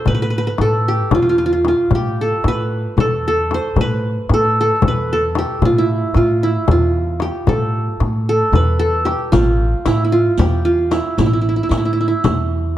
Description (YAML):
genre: Turkish makam ensemble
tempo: 227 BPM (eighths)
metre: 7/8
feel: straight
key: unclear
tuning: A4 = 440 Hz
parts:
  - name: qanun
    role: melody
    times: 0.0-12.8 s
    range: E4 to C5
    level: -17 LUFS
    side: right 1 dB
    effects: none
  - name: upright bass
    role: bass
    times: 0.1-12.8 s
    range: A1 to A2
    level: -19 LUFS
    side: equal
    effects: none
  - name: frame drum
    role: percussion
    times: 0.1-12.4 s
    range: none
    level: -20 LUFS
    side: left 4 dB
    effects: none
  - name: riq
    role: percussion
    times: 9.3-12.4 s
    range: none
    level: -28 LUFS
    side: right 4 dB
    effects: none
room: light reverb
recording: dark, warm production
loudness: -14 LUFS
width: side -12 dB against mid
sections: 0.0-9.3 A section; 9.3-12.8 A section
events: none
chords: none